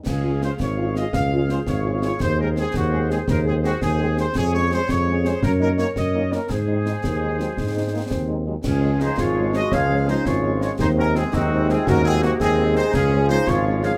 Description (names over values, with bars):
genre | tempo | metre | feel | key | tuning
military-style march for wind band | 112 BPM (dotted quarters) | 6/8 | straight | Db major | A4 = 440 Hz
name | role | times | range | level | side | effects
clear trumpet section | melody | 0.1-13.9 s | Gb4 to F5 | -29 LUFS | equal | none
warm woodwind section | second line | 0.1-14.0 s | Bb3 to F5 | -31 LUFS | equal | none
warm tuba | bass | 0.1-13.9 s | Ab1 to Ab2 | -24 LUFS | equal | none
concert snare drum, clash cymbals and concert bass drum | drums | 0.1-14.0 s | none | -30 LUFS | equal | none
warm French horn section | accompaniment | 0.2-13.9 s | Eb3 to Ab4 | -31 LUFS | equal | none
warm euphonium | second line | 7.0-14.0 s | Eb3 to Ab4 | -29 LUFS | equal | none
flute section | second line | 8.6-14.0 s | Eb4 to Db5 | -35 LUFS | equal | none
bright trombone section | sustained chords | 8.6-14.0 s | C3 to Ab3 | -30 LUFS | equal | none
room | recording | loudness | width
light reverb | none | -21 LUFS | mono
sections
0.0-8.6 A section; 8.6-14.0 A section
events
none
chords
0.1 Db; 2.2 Ab7/Eb; 4.4 Db/F; 5.4 Ebm7/Gb; 6.5 Ab; 8.6 Db; 10.8 Ab7/Eb; 12.9 Db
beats
| 0.06 0.59 | 1.13 1.67 | 2.20 2.74 | 3.28 3.81 | 4.35 4.89 | 5.42 5.96 | 6.50 7.04 | 7.57 8.11 | 8.64 9.18 | 9.72 10.26 | 10.79 11.33 | 11.86 12.40 | 12.94 13.47